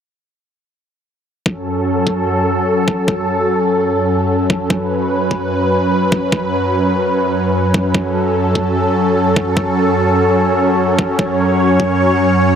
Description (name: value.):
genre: heavy wobble dubstep.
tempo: 148 BPM.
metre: 4/4.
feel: half-time.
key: F# minor.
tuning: A4 = 440 Hz.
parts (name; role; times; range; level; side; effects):
supersaw pad; sustained chords; 1.5-12.6 s; F#2 to C#5; -13 LUFS; equal; sidechain pumping, low-pass filter.
electronic kick drum; drums; 1.5-11.9 s; none; -17 LUFS; equal; overdrive, high-pass filter on kick.
room: moderate plate reverb, RT60 1.9 s.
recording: none.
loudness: -13 LUFS.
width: side -8 dB against mid.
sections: 1.5-12.6 A section.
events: filter sweep on supersaw synth 1.5-12.6.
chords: 1.5 F#m.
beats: | 1.46 1.86 2.27 2.67 | 3.08 3.49 3.89 4.30 | 4.70 5.11 5.51 5.92 | 6.32 6.73 7.13 7.54 | 7.95 8.35 8.76 9.16 | 9.57 9.97 10.38 10.78 | 11.19 11.59 12.00 12.40.